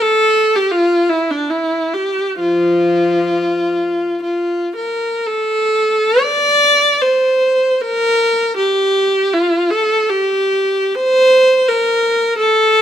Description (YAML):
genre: classical, free, expressive piece for unaccompanied viola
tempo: 50-87 BPM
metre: 3/4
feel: rubato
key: F major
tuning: A4 = 436 Hz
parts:
  - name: rich viola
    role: solo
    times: 0.0-12.8 s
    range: F3 to D5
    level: -12 LUFS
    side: equal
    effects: none
room: moderate stone room reverb, RT60 1.3 s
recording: none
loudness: -12 LUFS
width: side -10 dB against mid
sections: 0.0-5.3 A section; 5.3-12.8 B section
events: none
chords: none